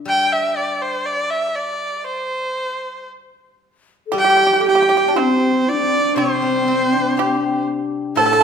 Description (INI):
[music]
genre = chinese traditional, Chinese chamber ensemble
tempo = 59 BPM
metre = 2/4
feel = straight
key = unclear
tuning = A4 = 436 Hz
[part]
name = steel-string zither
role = accompaniment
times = 0.0-8.4 s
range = A2 to G4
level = -25 LUFS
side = left 5 dB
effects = none
[part]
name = rich erhu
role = melody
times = 0.1-8.4 s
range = C5 to A5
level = -18 LUFS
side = right 1 dB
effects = none
[part]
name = breathy mellow low xiao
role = second line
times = 4.1-8.4 s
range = C4 to C5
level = -21 LUFS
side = left 3 dB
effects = none
[part]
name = pipa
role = second line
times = 4.1-8.4 s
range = C4 to A4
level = -22 LUFS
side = right 5 dB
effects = none
[part]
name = dark horsehead fiddle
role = second line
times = 4.2-8.4 s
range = C4 to A4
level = -22 LUFS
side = right 7 dB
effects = none
[sound]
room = wet recital hall reverb, RT60 1.5 s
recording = minimal, uncompressed stereo recording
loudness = -16 LUFS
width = side -7 dB against mid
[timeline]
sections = 0.0-4.2 A section; 4.2-8.4 B section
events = none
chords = none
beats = | 0.09 1.10 | 2.11 3.13 | 4.16 5.17 | 6.18 7.18 | 8.17